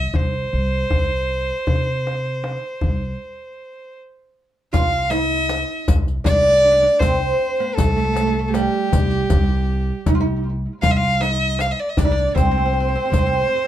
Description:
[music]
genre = Arabic maqam ensemble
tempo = 79 BPM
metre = 4/4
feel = straight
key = C maqam rast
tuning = A4 = 439 Hz
[part]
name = rich violin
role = melody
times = 0.0-13.7 s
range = G4 to F5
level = -20 LUFS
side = equal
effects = none
[part]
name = upright bass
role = bass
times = 0.0-13.4 s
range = C2 to C3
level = -22 LUFS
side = equal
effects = none
[part]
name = darbuka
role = percussion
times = 0.1-13.6 s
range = none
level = -21 LUFS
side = left 1 dB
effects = none
[part]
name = oud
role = second line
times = 4.7-13.7 s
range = G3 to F4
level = -24 LUFS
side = right 3 dB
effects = tape echo
[part]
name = riq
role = percussion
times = 4.7-13.3 s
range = none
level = -29 LUFS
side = left 6 dB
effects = none
[sound]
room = moderate studio reverb, RT60 0.5 s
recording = dark, warm production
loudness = -17 LUFS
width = side -11 dB against mid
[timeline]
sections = 0.0-4.7 A section; 4.7-13.7 B section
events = break 3.2-4.7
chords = none

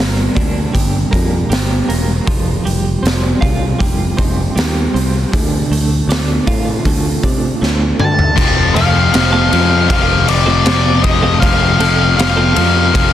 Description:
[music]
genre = quiet-loud alternative rock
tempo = 79 BPM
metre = 4/4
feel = straight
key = unclear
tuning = A4 = 440 Hz
[part]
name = twelve-string electric guitar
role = arpeggios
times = 0.0-13.0 s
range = G2 to A4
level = -21 LUFS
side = right 3 dB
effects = tremolo, analog delay
[part]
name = picked electric bass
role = bass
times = 0.0-13.1 s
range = E1 to D3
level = -16 LUFS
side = equal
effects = none
[part]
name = raw garage drum kit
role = drums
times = 0.0-13.1 s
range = crash cymbal, hi-hat, kick drum, ride cymbal, snare drum, toms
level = -16 LUFS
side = equal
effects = none
[part]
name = octave-fuzz lead guitar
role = melody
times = 8.0-13.1 s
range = D5 to A5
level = -16 LUFS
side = equal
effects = distortion
[part]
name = high-gain distorted guitar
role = riff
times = 8.4-13.1 s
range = F2 to F3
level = -16 LUFS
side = left 15 dB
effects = distortion
[sound]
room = light reverb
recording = dense, heavily limited modern master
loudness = -11 LUFS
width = side -12 dB against mid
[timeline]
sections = 0.0-8.4 A section; 8.4-13.1 B section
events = drum fill 7.6-8.4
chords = 0.0 Gm; 2.3 Fsus2; 5.3 Dm; 8.4 F

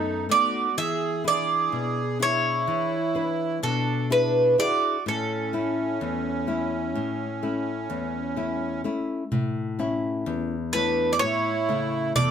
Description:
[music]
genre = greek folk, Greek bouzouki band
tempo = 126 BPM (eighths)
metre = 9/8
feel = straight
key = A major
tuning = A4 = 440 Hz
[part]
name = Greek bouzouki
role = melody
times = 0.0-12.3 s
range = A4 to E5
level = -24 LUFS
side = right 2 dB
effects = none
[part]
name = accordion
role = second line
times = 0.0-12.3 s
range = C#4 to A4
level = -30 LUFS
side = right 5 dB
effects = light tremolo tuning
[part]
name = nylon-string guitar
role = accompaniment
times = 0.0-12.3 s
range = E2 to C#5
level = -28 LUFS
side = left 4 dB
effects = none
[part]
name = darbuka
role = percussion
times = 9.3-12.3 s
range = none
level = -28 LUFS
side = right 2 dB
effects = none
[sound]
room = wet studio ambience, RT60 0.5 s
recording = band playing live in one room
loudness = -23 LUFS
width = side -8 dB against mid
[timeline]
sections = 0.0-9.3 A section; 9.3-12.3 B section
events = none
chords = 0.0 B7; 0.8 E7; 5.1 A

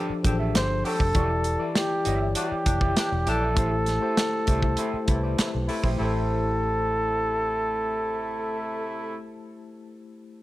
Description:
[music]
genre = lush 1970s-style soul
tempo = 99 BPM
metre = 4/4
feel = straight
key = A minor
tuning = A4 = 441 Hz
[part]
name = mellow tine electric piano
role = accompaniment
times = 0.0-10.4 s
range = E3 to D5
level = -31 LUFS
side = left 3 dB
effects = medium stereo tremolo
[part]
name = electric guitar through a small old amp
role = riff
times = 0.0-9.5 s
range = E4 to E5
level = -37 LUFS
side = right 6 dB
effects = none
[part]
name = warm horn section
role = stabs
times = 0.0-9.2 s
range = C3 to G4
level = -35 LUFS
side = left 1 dB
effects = none
[part]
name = vintage muted fingered electric bass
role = bass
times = 0.1-9.3 s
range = E1 to C2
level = -28 LUFS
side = equal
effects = none
[part]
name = modern studio drum kit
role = drums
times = 0.2-6.0 s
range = hi-hat, kick drum, snare drum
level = -26 LUFS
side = equal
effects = none
[part]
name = breathy flugelhorn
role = melody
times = 0.6-9.2 s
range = G4 to C5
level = -28 LUFS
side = equal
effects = none
[sound]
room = little or no reverb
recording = none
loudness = -23 LUFS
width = side -16 dB against mid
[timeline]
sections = 0.0-6.0 A section; 6.0-8.4 B section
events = none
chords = 0.0 F69; 1.1 Em7; 3.6 Am7

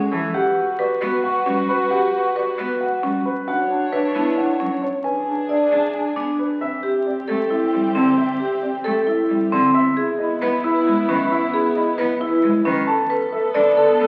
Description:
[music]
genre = classical, minimalist pattern music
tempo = 268 BPM (eighths)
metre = 7/8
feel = straight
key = A minor from 6.6 s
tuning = A4 = 441 Hz
[part]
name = dark clarinet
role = second line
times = 0.0-14.1 s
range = C4 to A4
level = -28 LUFS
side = equal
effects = none
[part]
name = rich cello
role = accompaniment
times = 0.0-14.1 s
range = D3 to D4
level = -30 LUFS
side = equal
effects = none
[part]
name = dark chamber string section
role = sustained chords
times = 0.0-14.1 s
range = B3 to C#5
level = -31 LUFS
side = equal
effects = none
[part]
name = vibraphone with soft mallets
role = arpeggios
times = 0.0-14.1 s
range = C4 to D5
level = -22 LUFS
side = equal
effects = none
[part]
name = dark baby grand piano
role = melody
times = 0.1-14.1 s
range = A4 to A5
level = -28 LUFS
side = equal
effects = none
[sound]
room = wet recital hall reverb, RT60 1.7 s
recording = very old 78 rpm record, vinyl crackle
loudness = -20 LUFS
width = mono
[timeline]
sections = 0.0-6.6 A section; 6.6-14.1 B section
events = none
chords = 0.3 Gmaj7; 3.5 Bmadd9; 5.0 E7 (rootless); 6.6 Am7; 9.7 C#m7; 12.9 Esus4

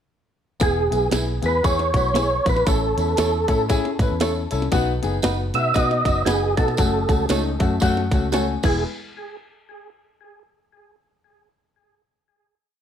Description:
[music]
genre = uptempo 1960s-style soul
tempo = 116 BPM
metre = 4/4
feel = swing 60% on 8ths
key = E major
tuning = A4 = 438 Hz
[part]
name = percussive tonewheel organ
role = melody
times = 0.6-8.8 s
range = G#4 to E5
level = -23 LUFS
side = right 2 dB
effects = chorus vibrato, fast rotary speaker, tape echo
[part]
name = warm baby grand piano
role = accompaniment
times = 0.6-8.8 s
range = G#3 to G#5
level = -25 LUFS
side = left 5 dB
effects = none
[part]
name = vintage muted fingered electric bass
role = bass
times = 0.6-8.8 s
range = E1 to B2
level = -25 LUFS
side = equal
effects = none
[part]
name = glitchy drum kit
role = drums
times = 0.6-8.7 s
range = crash cymbal, hi-hat, kick drum, snare drum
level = -23 LUFS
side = equal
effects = none
[part]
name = tambourine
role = percussion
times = 0.6-8.8 s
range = none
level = -35 LUFS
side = right 4 dB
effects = none
[part]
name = direct-recorded clean electric guitar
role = stabs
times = 1.1-8.8 s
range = B3 to C#5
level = -27 LUFS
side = right 8 dB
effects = none
[sound]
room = light reverb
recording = none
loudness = -18 LUFS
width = side -9 dB against mid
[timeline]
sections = 0.6-8.8 A section; 8.8-10.9 final hit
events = grand piano fill 7.3-8.8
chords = 0.6 E; 2.7 A; 4.7 B; 6.8 F#m; 8.6 E; 8.8 N.C.

